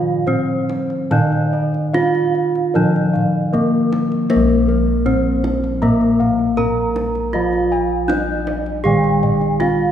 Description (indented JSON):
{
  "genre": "Javanese gamelan",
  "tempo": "70-79 BPM",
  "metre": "4/4",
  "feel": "straight",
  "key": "Bb slendro",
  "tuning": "A4 = 439 Hz",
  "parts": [
    { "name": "gamelan-type bronze metallophone", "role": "melody", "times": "0.0-9.9 s", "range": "Bb3 to Bb4", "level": "-18 LUFS", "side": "right 1 dB", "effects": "none" },
    { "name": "gamelan-type bronze metallophone", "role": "accompaniment", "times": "0.0-9.9 s", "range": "Eb3-35c to Bb3", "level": "-23 LUFS", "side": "left 1 dB", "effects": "none" },
    { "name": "gamelan-type bossed gongs", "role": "arpeggios", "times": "0.0-9.9 s", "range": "Bb4 to Bb5", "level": "-26 LUFS", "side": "left 1 dB", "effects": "none" },
    { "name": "gamelan-type bronze metallophone", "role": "arpeggios", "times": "0.0-9.9 s", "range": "Bb4 to Bb5", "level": "-26 LUFS", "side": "right 2 dB", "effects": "none" },
    { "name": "gamelan-type bossed gongs", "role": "bass", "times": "0.0-9.9 s", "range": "Bb1 to Bb4", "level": "-22 LUFS", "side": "left 1 dB", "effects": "none" },
    { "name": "kendang", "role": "percussion", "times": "0.3-9.8 s", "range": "none", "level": "-26 LUFS", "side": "right 1 dB", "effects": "none" }
  ],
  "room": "wet concert hall reverb, RT60 2.5 s",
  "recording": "heard from further back in the room",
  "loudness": "-15 LUFS",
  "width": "side -9 dB against mid",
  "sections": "0.0-4.3 A section; 4.3-9.9 B section",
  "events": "none",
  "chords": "none",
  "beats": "0.27 | 1.11 1.94 2.75 3.53 | 4.30 5.06 5.82 6.58 | 7.34 8.10 8.86 9.62"
}